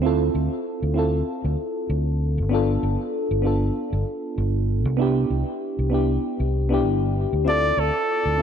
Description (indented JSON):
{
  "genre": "sunset chillout",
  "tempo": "97 BPM",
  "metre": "4/4",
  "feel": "swing 56% on 16ths",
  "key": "D dorian",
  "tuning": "A4 = 440 Hz",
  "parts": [
    { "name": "mellow FM electric piano", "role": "accompaniment", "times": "0.0-8.4 s", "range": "B3 to A4", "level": "-24 LUFS", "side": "moving between left 5 dB and right 8 dB", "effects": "chorus, auto-pan, ping-pong delay" },
    { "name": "fingered electric bass", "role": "bass", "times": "0.0-8.4 s", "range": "G1 to D2", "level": "-23 LUFS", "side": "equal", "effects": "none" },
    { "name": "clear flugelhorn", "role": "melody", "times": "7.5-8.4 s", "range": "A4 to D5", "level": "-20 LUFS", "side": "right 1 dB", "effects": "ping-pong delay" }
  ],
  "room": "light reverb, small room ambience",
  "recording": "nothing above 10.3 kHz",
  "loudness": "-20 LUFS",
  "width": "side -8 dB against mid",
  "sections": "0.0-8.4 A section",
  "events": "none",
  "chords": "0.0 Dm7; 2.5 G9; 5.0 Cmaj9; 7.5 Dm7"
}